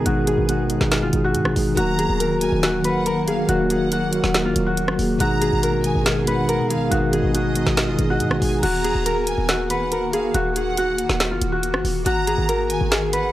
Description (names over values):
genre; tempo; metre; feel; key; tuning
hip hop, trap; 140 BPM; 4/4; half-time; Eb minor; A4 = 440 Hz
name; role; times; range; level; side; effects
Celtic harp; melody; 0.0-13.3 s; F4 to Cb5; -23 LUFS; left 2 dB; tape echo
mellow tine electric piano; accompaniment; 0.0-8.7 s; Cb3 to Bb4; -22 LUFS; equal; medium stereo tremolo
granular cloud pad; sustained chords; 0.0-13.3 s; Eb3 to Ab4; -30 LUFS; right 1 dB; built-in reverb
short 808-style bass; bass; 0.0-13.3 s; Eb1 to Eb3; -26 LUFS; equal; none
trap drum kit; drums; 0.1-13.2 s; crash cymbal, hi-hat, rim click, snare drum; -24 LUFS; equal; none
clear studio violin section; second line; 1.8-13.3 s; Eb5 to Bb5; -29 LUFS; right 1 dB; tape echo
room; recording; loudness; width
little or no reverb; dry, gritty hardware recording; -18 LUFS; side -14 dB against mid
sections
0.0-8.6 A section; 8.6-13.3 A section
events
none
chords
0.0 Abm; 1.8 Ebm; 5.2 Abm; 8.6 Ebm; 12.1 Abm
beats
| 0.06 0.49 0.92 1.34 | 1.77 2.20 2.63 3.06 | 3.49 3.92 4.34 4.77 | 5.20 5.63 6.06 6.49 | 6.92 7.34 7.77 8.20 | 8.63 9.06 9.49 9.92 | 10.35 10.77 11.20 11.63 | 12.06 12.49 12.92